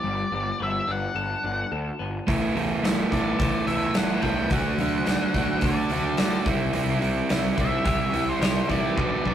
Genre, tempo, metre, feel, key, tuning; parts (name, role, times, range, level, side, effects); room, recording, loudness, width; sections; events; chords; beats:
quiet-loud alternative rock; 108 BPM; 4/4; straight; A4 = 442 Hz
octave-fuzz lead guitar; melody; 0.0-9.3 s; C5 to G5; -29 LUFS; left 1 dB; distortion
twelve-string electric guitar; arpeggios; 0.0-9.3 s; B2 to A4; -33 LUFS; left 4 dB; harmonic tremolo
fuzz picked electric bass; bass; 0.0-9.3 s; G1 to A2; -32 LUFS; equal; overdrive
crunchy overdriven guitar; riff; 2.3-9.3 s; B2 to A4; -25 LUFS; right 2 dB
huge arena drum kit; drums; 2.3-9.3 s; hi-hat, kick drum, snare drum; -26 LUFS; equal
moderate stone room reverb, RT60 1.1 s; rough rehearsal-room recording, tube saturation; -22 LUFS; side -10 dB against mid
0.0-9.3 A section
drum fill 9.0-9.3
0.0 Gadd9; 2.3 Asus2; 4.5 D; 6.5 Cmaj7
| 0.04 0.60 1.16 1.72 | 2.28 2.84 3.40 3.96 | 4.51 5.07 5.63 6.19 | 6.75 7.30 7.86 8.42 | 8.98